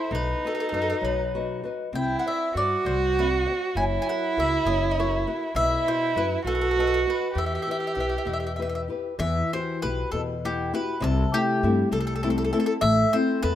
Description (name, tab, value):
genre	italian folk, Italian serenade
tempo	66 BPM (dotted quarters)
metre	6/8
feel	rubato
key	E minor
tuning	A4 = 440 Hz
part	mandolin	melody	0.0-13.6 s	G4 to G#5	-28 LUFS	left 1 dB	none
part	dark violin	second line	0.0-8.9 s	D#4 to G4	-26 LUFS	right 4 dB	none
part	nylon-string guitar	accompaniment	0.0-13.6 s	B2 to F#5	-28 LUFS	left 3 dB	none
part	upright bass	bass	0.1-13.6 s	F#1 to G2	-28 LUFS	left 1 dB	none
room	light reverb, small room ambience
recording	rough home demo mix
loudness	-22 LUFS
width	side -11 dB against mid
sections	0.0-9.2 A section; 9.2-13.6 A section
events	none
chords	0.1 B; 1.9 Cadd9; 3.8 F#7; 5.6 Bsus4; 6.5 B; 7.4 Em; 9.2 Emadd9; 11.0 C6; 12.8 Am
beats	| 0.12 1.02 | 1.94 2.85 | 3.76 4.66 | 5.56 6.46 | 7.36 8.27 | 9.20 10.12 | 11.02 11.92 | 12.82